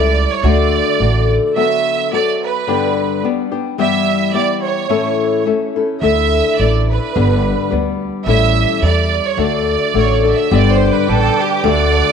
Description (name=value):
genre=mexican folk, mariachi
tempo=107 BPM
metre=2/4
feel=rubato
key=D major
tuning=A4 = 440 Hz
part: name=bright studio violin section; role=melody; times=0.0-12.1 s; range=G4 to E5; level=-18 LUFS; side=right 10 dB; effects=none
part: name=flamenco guitar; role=accompaniment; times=0.0-12.1 s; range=G2 to B4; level=-16 LUFS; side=left 6 dB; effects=none
part: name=upright bass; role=bass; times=0.0-1.4, 6.0-12.0 s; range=G1 to E2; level=-16 LUFS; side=right 2 dB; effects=none
part: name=dark studio violin section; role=sustained chords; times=10.5-12.1 s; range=A4 to D6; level=-21 LUFS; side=equal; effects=none
room=wet echo chamber reverb, RT60 1.8 s, small room ambience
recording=1960s-style stereo with parts hard left and right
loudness=-13 LUFS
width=side -7 dB against mid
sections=0.0-1.6 A section; 1.6-10.5 A section; 10.5-12.1 B section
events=none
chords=0.4 D; 1.6 D6; 2.7 G; 3.8 Em/G; 4.9 A; 6.0 Dsus2; 7.2 G; 8.3 A7; 9.4 D; 10.5 G